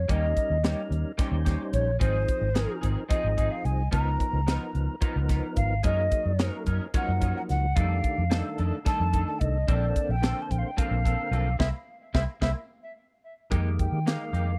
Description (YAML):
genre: electric jazz fusion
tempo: 219 BPM (eighths)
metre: 7/8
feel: straight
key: F minor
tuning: A4 = 440 Hz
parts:
  - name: mellow hollow jazz flute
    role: melody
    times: 0.0-14.6 s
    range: C5 to Bb5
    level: -34 LUFS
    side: equal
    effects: tape echo
  - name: vintage muted fingered electric bass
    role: bass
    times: 0.0-14.6 s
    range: Ab1 to Eb3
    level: -29 LUFS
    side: equal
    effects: none
  - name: percussive tonewheel organ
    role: accompaniment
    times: 0.1-14.6 s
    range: D3 to C5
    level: -37 LUFS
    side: equal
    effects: slow rotary speaker, overdrive, chorus vibrato
  - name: electric guitar at the edge of break-up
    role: stabs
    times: 0.1-14.5 s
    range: F3 to Bb4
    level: -40 LUFS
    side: equal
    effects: ensemble chorus
  - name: crisp fusion drum kit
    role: drums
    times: 0.1-14.5 s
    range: hi-hat, kick drum, snare drum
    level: -29 LUFS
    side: equal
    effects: none
room: studio reverb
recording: dry, close 1970s-style studio recording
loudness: -27 LUFS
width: mono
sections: 0.0-13.5 A section; 13.5-14.6 B section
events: band accent 11.6-13.5; drum fill 11.9-13.5; flute solo 13.5-14.6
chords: 0.1 Eb7; 2.0 Ab6; 3.9 Db13; 5.8 Gb69; 7.8 F13; 9.7 Bbmaj9; 11.6 Caug7; 13.5 Fm11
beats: | 0.09 0.37 0.64 0.91 1.19 1.46 1.74 | 2.01 2.28 2.56 2.83 3.11 3.38 3.65 | 3.93 4.20 4.48 4.75 5.02 5.30 5.57 | 5.85 6.12 6.39 6.67 6.94 7.21 7.49 | 7.76 8.04 8.31 8.59 8.86 9.13 9.41 | 9.68 9.95 10.23 10.50 10.78 11.05 11.32 | 11.60 11.87 12.15 12.42 12.70 12.97 13.24 | 13.52 13.79 14.07 14.34